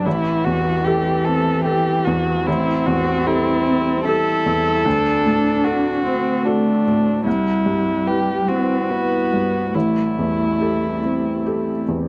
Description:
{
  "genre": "neoclassical piano and strings",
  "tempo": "74 BPM",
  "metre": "3/4",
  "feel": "uneven beats, rubato",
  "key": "A dorian",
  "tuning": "A4 = 438 Hz",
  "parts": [
    { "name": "muted violin", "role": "melody", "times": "0.0-11.9 s", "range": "D4 to A4", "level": "-24 LUFS", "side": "equal", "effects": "none" },
    { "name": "muted cello", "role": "second line", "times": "0.0-11.8 s", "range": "E3 to E4", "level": "-24 LUFS", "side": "equal", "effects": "none" },
    { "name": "felt-muted upright piano", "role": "accompaniment", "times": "0.0-12.1 s", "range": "A1 to B4", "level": "-24 LUFS", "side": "equal", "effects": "none" },
    { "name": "warbly tape-like pad", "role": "sustained chords", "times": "0.0-12.1 s", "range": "G3 to B4", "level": "-32 LUFS", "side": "equal", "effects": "none" }
  ],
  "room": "light reverb",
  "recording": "dry, close 1970s-style studio recording",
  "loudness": "-19 LUFS",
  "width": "mono",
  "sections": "0.0-12.1 A section",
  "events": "none",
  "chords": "0.1 Am7; 4.9 D7; 7.3 Cmaj7; 9.7 Am7"
}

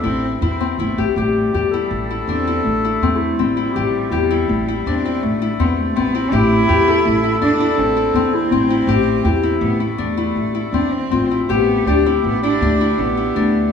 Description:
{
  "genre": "contemporary instrumental, chamber music in an uneven meter",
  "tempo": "162 BPM",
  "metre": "7/4",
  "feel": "straight",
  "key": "A minor",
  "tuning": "A4 = 441 Hz",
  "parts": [
    { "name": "mellow clarinet", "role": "melody", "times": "0.0-13.7 s", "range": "E4 to A4", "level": "-21 LUFS", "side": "right 1 dB", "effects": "none" },
    { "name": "warm cello", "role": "second line", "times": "0.0-13.7 s", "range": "G3 to E4", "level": "-22 LUFS", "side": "right 3 dB", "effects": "none" },
    { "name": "Celtic harp", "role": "arpeggios", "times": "0.0-13.7 s", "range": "C4 to G4", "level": "-20 LUFS", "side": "left 8 dB", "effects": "none" },
    { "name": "upright bass", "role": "bass", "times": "0.0-13.7 s", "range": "G1 to E2", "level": "-21 LUFS", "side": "equal", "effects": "none" }
  ],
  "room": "wet recital hall reverb, RT60 1.6 s",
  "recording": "small room ambience",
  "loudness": "-15 LUFS",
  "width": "side -7 dB against mid",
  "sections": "0.0-1.2 A section; 1.2-13.7 B section",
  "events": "none",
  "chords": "0.0 Am; 1.2 Am7"
}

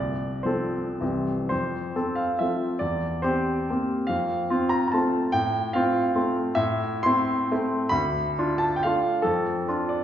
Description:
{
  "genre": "classical, romantic triple-time dance for piano with dotted rhythms",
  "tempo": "103-154 BPM",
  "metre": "3/4",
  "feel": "rubato",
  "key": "F major",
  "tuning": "A4 = 440 Hz",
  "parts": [
    { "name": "clear baby grand piano", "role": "solo", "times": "0.0-10.0 s", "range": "C2 to C6", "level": "-23 LUFS", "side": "equal", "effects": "none" }
  ],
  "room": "wet recital hall reverb, RT60 1.8 s",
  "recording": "heard from further back in the room, nothing above 7.5 kHz",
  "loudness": "-22 LUFS",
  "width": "side -10 dB against mid",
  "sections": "0.0-1.5 A section; 1.5-10.0 B section",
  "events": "none",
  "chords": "0.0 F/C; 1.0 C; 1.5 F; 2.8 C7/E; 4.1 F; 5.3 F/A; 6.6 Am; 7.9 Dm; 9.2 Dm/F"
}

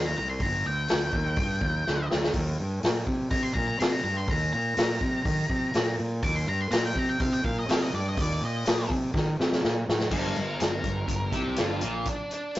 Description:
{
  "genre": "blues rock power trio and southern rock",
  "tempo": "123 BPM",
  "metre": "4/4",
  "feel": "straight",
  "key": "G minor",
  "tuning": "A4 = 436 Hz",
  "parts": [
    { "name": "octave-fuzz lead guitar", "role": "melody", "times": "0.0-12.6 s", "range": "D4 to D6", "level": "-31 LUFS", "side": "left 1 dB", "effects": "distortion" },
    { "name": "fuzz fingered electric bass", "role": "bass", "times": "0.0-12.1 s", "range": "G1 to Eb3", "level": "-29 LUFS", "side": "equal", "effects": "overdrive" },
    { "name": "vintage drum kit", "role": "drums", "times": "0.4-12.6 s", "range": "crash cymbal, hi-hat, kick drum, snare drum", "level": "-28 LUFS", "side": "equal", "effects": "none" },
    { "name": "distorted electric guitar", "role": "riff", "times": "10.1-12.1 s", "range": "G2 to C3", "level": "-32 LUFS", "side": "equal", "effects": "distortion" }
  ],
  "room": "light reverb",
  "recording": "rough rehearsal-room recording, tube saturation, nothing above 7.6 kHz",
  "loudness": "-24 LUFS",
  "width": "side -15 dB against mid",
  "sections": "0.0-10.1 A section; 10.1-12.6 B section",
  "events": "lead electric guitar solo 0.0-10.1; drum fill 1.9-2.3, 9.1-10.1",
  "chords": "0.0 G5; 2.3 Eb; 10.1 Gm"
}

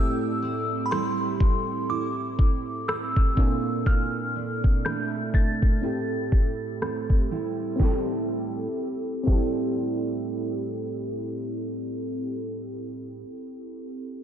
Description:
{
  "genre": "contemporary R&B",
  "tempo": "61 BPM",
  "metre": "4/4",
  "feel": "swing 58% on 16ths",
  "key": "A phrygian",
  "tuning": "A4 = 440 Hz",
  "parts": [
    { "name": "glassy synth bell", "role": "melody", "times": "0.0-6.8 s", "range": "B5 to A6", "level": "-31 LUFS", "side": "left 2 dB", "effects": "chorus, tape echo" },
    { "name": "FM electric piano with soft pad layer", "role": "accompaniment", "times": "0.0-14.2 s", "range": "Bb2 to A4", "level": "-30 LUFS", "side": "equal", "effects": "chorus" },
    { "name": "picked steel-string acoustic guitar", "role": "arpeggios", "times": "0.0-13.3 s", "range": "A2 to E4", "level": "-31 LUFS", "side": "right 6 dB", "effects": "lush chorus, tape echo" },
    { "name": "smooth R&B drum kit", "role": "drums", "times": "0.9-9.6 s", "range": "crash cymbal, kick drum, rim click, snare drum", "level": "-23 LUFS", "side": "equal", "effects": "none" }
  ],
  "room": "moderate lush hall reverb, RT60 2.8 s",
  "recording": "dreamy mix soaked in reverb, low-pass filter",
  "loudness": "-24 LUFS",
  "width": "side -9 dB against mid",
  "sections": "0.0-7.8 A section; 7.8-11.7 B section",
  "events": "filter sweep 0.0-7.8",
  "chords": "0.0 Am7; 3.4 Bbmaj9#11; 5.8 Am7"
}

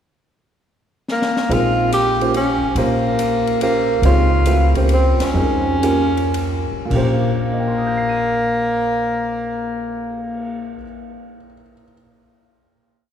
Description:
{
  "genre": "modal jazz",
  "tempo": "100-143 BPM",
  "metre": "3/4",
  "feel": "swing 68% on 8ths",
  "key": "Bb dorian",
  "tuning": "A4 = 440 Hz",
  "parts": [
    { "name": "warm tenor saxophone", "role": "melody", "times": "1.1-10.8 s", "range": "Bb3 to G4", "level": "-19 LUFS", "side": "equal", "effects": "none" },
    { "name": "open jazz drum kit", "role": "drums", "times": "1.1-10.4 s", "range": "crash cymbal, cymbal swell, hi-hat, kick drum, ride cymbal, snare drum", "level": "-30 LUFS", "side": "left 2 dB", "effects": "none" },
    { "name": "warm upright piano", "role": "accompaniment", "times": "1.5-11.9 s", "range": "Bb2 to Eb7", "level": "-22 LUFS", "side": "right 2 dB", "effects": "none" },
    { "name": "upright bass", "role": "bass", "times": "1.5-10.7 s", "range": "Bb1 to F2", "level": "-20 LUFS", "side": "equal", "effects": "none" }
  ],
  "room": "wet church reverb, RT60 3.2 s",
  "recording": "recorded in a church or concert hall",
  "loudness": "-16 LUFS",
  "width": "side -9 dB against mid",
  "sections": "0.2-1.5 pickup bar; 1.5-6.9 A section; 6.9-10.5 final chord",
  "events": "drum fill 1.1-1.5; slowing down 4.0-6.9; band accent 5.1",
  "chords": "0.2 N.C.; 1.5 Bbm69"
}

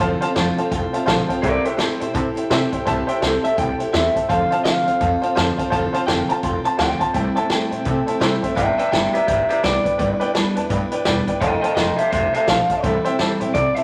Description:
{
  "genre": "rockabilly",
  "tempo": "168 BPM",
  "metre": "4/4",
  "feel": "swing 61% on 8ths",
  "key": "C major",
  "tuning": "A4 = 441 Hz",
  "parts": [
    { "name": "electric guitar through a small old amp", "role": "melody", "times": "0.0-13.8 s", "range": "C4 to A5", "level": "-23 LUFS", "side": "equal", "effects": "none" },
    { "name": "picked steel-string acoustic guitar", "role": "accompaniment", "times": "0.0-13.8 s", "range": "C3 to C5", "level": "-26 LUFS", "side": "equal", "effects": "none" },
    { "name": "warm upright piano", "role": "accompaniment", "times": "0.0-13.8 s", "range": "B4 to C6", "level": "-27 LUFS", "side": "equal", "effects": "none" },
    { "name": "upright bass", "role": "bass", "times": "0.0-13.8 s", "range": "E1 to C3", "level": "-30 LUFS", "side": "equal", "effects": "none" },
    { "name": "vintage drum kit", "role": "drums", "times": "0.0-13.8 s", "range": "hi-hat, kick drum, snare drum", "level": "-27 LUFS", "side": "equal", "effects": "none" }
  ],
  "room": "moderate large studio reverb, RT60 1.1 s",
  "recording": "vinyl crackle",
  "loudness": "-20 LUFS",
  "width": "mono",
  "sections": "0.0-13.8 A section",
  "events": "upright piano fill 0.7-1.4",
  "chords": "0.0 F6; 1.4 C6; 4.3 F6; 7.1 C6; 8.6 G6; 11.4 F6; 12.8 C6"
}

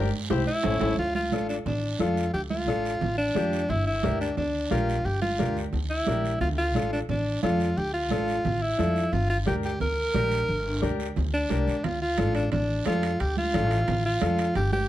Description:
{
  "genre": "latin, cumbia",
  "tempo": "177 BPM",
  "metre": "4/4",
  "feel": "straight",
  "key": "D minor",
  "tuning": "A4 = 437 Hz",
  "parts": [
    { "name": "bright upright piano", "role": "accompaniment", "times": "0.0-14.5 s", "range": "C#4 to C5", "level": "-31 LUFS", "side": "left 5 dB", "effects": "none" },
    { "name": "upright bass", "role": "bass", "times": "0.0-14.9 s", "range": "G1 to F2", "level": "-28 LUFS", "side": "equal", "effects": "none" },
    { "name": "congas", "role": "percussion", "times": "0.3-14.9 s", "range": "none", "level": "-33 LUFS", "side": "right 5 dB", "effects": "none" },
    { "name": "guiro", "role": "percussion", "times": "0.3-14.9 s", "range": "none", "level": "-42 LUFS", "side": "right 6 dB", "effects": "none" },
    { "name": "timbales", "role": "percussion", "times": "0.3-0.9, 11.8-14.7 s", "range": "none", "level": "-38 LUFS", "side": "right 6 dB", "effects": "none" },
    { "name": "bright alto saxophone", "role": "melody", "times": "0.5-14.9 s", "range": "D4 to Bb4", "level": "-27 LUFS", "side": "equal", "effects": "none" }
  ],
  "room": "moderate large studio reverb, RT60 0.8 s",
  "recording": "dark, warm production",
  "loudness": "-24 LUFS",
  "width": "side -13 dB against mid",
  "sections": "1.0-14.9 A section",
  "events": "band accent 0.0-1.0; drum fill 0.3-1.0; upright piano fill 0.3-1.0",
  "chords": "0.3 C; 0.6 A; 1.0 Dm; 3.7 Gm; 6.4 Dm; 9.1 Gm; 11.8 Dm"
}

